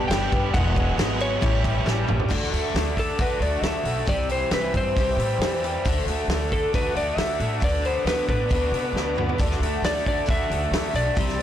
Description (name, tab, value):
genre	folk rock and heartland rock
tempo	136 BPM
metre	4/4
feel	straight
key	D mixolydian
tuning	A4 = 441 Hz
part	electric slide guitar	melody	0.0-11.4 s	A4 to G5	-27 LUFS	left 1 dB	slapback echo
part	picked twelve-string acoustic guitar	accompaniment	0.0-11.4 s	E2 to G4	-32 LUFS	left 4 dB	ensemble chorus
part	dark studio string section	sustained chords	0.0-11.4 s	F#4 to E6	-39 LUFS	left 2 dB	none
part	raw garage guitar	riff	0.0-11.4 s	E2 to G#4	-28 LUFS	right 1 dB	overdrive
part	upright bass	bass	0.0-11.4 s	E1 to C3	-27 LUFS	equal	transformer saturation
part	natural country drum kit	drums	0.1-11.4 s	crash cymbal, hi-hat, kick drum, snare drum, toms	-26 LUFS	equal	none
room	light reverb, studio reverb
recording	blown-out, overdriven recording, overdrive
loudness	-21 LUFS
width	side -10 dB against mid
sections	0.0-2.3 A section; 2.3-11.4 B section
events	drum fill 1.9-2.3, 9.0-9.4; electric slide guitar solo 2.3-11.4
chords	0.0 G; 0.5 Eadd9; 1.4 A7; 2.3 D; 4.1 C; 5.9 D; 7.6 Bm/D; 9.4 D